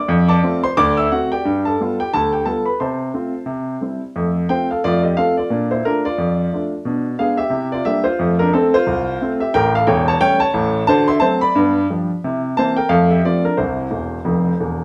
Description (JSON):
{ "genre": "jazz, stride piano", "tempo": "178 BPM", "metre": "4/4", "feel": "swing 60% on 8ths", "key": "F major", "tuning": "A4 = 440 Hz", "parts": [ { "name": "warm grand piano", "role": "solo", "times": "0.0-14.8 s", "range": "E1 to E6", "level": "-18 LUFS", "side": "equal", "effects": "none" } ], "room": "wet club reverb, RT60 0.8 s", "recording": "heard from further back in the room", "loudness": "-18 LUFS", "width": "mono", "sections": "0.0-4.2 A section; 4.2-14.8 B section", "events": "grand piano fill 13.9-14.8", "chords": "0.1 F; 0.8 D7; 1.4 G7; 2.8 F/C; 3.5 C; 4.2 F; 5.5 Bbmaj7; 6.9 Bdim7; 7.5 C9; 8.2 F; 9.5 A7; 10.9 D7; 11.6 G7; 12.2 C7; 12.9 F; 13.6 C" }